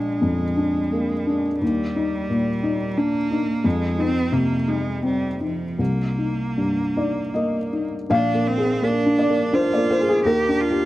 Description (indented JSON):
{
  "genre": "neoclassical piano and strings",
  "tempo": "76-89 BPM",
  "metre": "3/4",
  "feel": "rubato",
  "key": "unclear",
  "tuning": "A4 = 436 Hz",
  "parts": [
    { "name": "rich cello", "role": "second line", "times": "0.0-10.9 s", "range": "F3 to G4", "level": "-26 LUFS", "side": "right 3 dB", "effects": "plate reverb" },
    { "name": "felt-muted upright piano", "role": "accompaniment", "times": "0.0-10.9 s", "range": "Bb1 to F5", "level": "-20 LUFS", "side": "left 1 dB", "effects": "plate reverb" }
  ],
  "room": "moderate studio reverb, RT60 0.5 s",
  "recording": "vinyl crackle",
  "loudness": "-19 LUFS",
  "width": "side -16 dB against mid",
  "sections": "0.0-8.1 A section; 8.1-10.9 B section",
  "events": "none",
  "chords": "0.0 Bb7; 1.6 Ebmaj7; 3.6 Fm7; 5.8 Cm7; 8.1 Bb7; 10.2 Ebmaj7",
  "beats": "0.22 0.93 | 1.62 2.30 2.97 | 3.65 4.33 5.04 | 5.79 6.58 7.35 | 8.10 8.82 9.53 | 10.24"
}